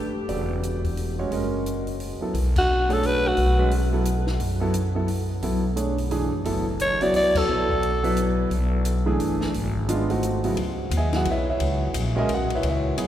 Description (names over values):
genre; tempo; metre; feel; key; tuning
modal jazz; 175 BPM; 3/4; swing 62% on 8ths; B dorian; A4 = 440 Hz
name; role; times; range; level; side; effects
growling alto saxophone; melody; 0.0-0.2, 2.6-3.7, 6.8-8.4 s; F#4 to D5; -26 LUFS; equal; none
warm concert grand piano; accompaniment; 0.0-13.1 s; C#3 to G#5; -25 LUFS; equal; none
upright bass; bass; 0.1-13.1 s; E1 to F#2; -25 LUFS; equal; none
compact cocktail drum kit; drums; 0.3-13.1 s; crash cymbal, hi-hat, kick drum, ride cymbal, snare drum; -34 LUFS; left 2 dB; none
room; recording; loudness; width
wet cathedral reverb, RT60 5.5 s; recorded in a church or concert hall; -21 LUFS; side -11 dB against mid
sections
0.0-2.3 A section; 2.3-10.6 B section; 10.6-13.1 C section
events
band accent 2.5, 7.3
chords
0.0 E7sus2; 1.3 F#; 2.3 Bm7; 9.5 G#7b9; 10.6 C#m9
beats
| 0.29 0.63 0.97 | 1.32 1.66 2.00 | 2.35 2.69 3.03 | 3.37 3.71 4.06 | 4.40 4.74 5.08 | 5.42 5.77 6.11 | 6.45 6.80 7.14 | 7.48 7.82 8.17 | 8.51 8.85 9.20 | 9.54 9.88 10.23 | 10.57 10.92 11.26 | 11.61 11.95 12.29 | 12.64 12.98